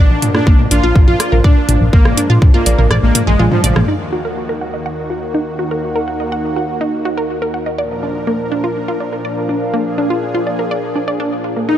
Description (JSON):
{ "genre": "melodic techno", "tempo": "123 BPM", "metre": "4/4", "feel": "straight", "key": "Eb harmonic minor", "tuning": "A4 = 439 Hz", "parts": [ { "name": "soft supersaw", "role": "melody", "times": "0.0-3.8, 11.7-11.8 s", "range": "F3 to F4", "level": "-20 LUFS", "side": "left 1 dB", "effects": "lush chorus, tape echo" }, { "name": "lush unison pad", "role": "sustained chords", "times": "0.0-11.8 s", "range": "Eb2 to Bb4", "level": "-23 LUFS", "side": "equal", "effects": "chorus, sidechain pumping" }, { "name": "wide unison pluck", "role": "arpeggios", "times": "0.0-11.8 s", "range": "Ab3 to Gb5", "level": "-19 LUFS", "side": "equal", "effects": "sidechain pumping, dub echo" }, { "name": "plucky analog bass", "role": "bass", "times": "0.0-3.9 s", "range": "Bb1 to Bb2", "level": "-14 LUFS", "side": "equal", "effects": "sidechain pumping" }, { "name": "techno drum kit", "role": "drums", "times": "0.2-3.9 s", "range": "hi-hat, rim click, toms", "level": "-18 LUFS", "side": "equal", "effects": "none" }, { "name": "electronic kick drum", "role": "drums", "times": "0.5-2.5 s", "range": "none", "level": "-9 LUFS", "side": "equal", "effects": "none" }, { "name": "warbly tape-like pad", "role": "texture", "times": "4.4-11.8 s", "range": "D4 to Gb5", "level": "-23 LUFS", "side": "equal", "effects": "chorus, built-in reverb, sidechain pumping" } ], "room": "light reverb", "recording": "none", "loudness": "-13 LUFS", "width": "side -11 dB against mid", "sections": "0.0-3.9 A section; 3.9-11.8 B section", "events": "kick drops out 2.9-3.9; drum fill 3.4-3.9", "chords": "0.0 Bb; 3.9 Ebm; 7.8 Bb", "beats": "0.47 0.96 1.44 | 1.93 2.42 2.91 3.40 | 3.88 4.37 4.86 5.35 | 5.83 6.32 6.81 7.30 | 7.79 8.27 8.76 9.25 | 9.74 10.22 10.71 11.20 | 11.69" }